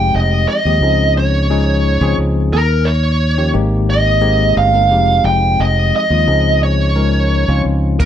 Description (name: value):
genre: electric jazz fusion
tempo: 88 BPM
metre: 4/4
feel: straight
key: unclear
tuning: A4 = 441 Hz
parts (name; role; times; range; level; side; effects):
- smooth overdriven lead guitar; melody; 0.0-8.1 s; Bb4 to G5; -16 LUFS; right 2 dB; none
- bell-like tine electric piano; accompaniment; 0.0-8.0 s; F3 to Bb4; -19 LUFS; left 4 dB; medium stereo tremolo
- fingered electric bass; bass; 0.0-8.1 s; F1 to Eb2; -15 LUFS; equal; none
- crisp fusion drum kit; drums; 8.0-8.1 s; hi-hat, kick drum, ride cymbal; -12 LUFS; equal; none
room: light reverb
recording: dark, warm production, nothing above 10.4 kHz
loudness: -11 LUFS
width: side -10 dB against mid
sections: 0.0-8.1 A section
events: none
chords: 0.0 Fm9; 0.8 Dbmaj9; 2.5 Eb9; 3.6 Abmaj9; 4.9 Fm9; 6.3 Dbmaj9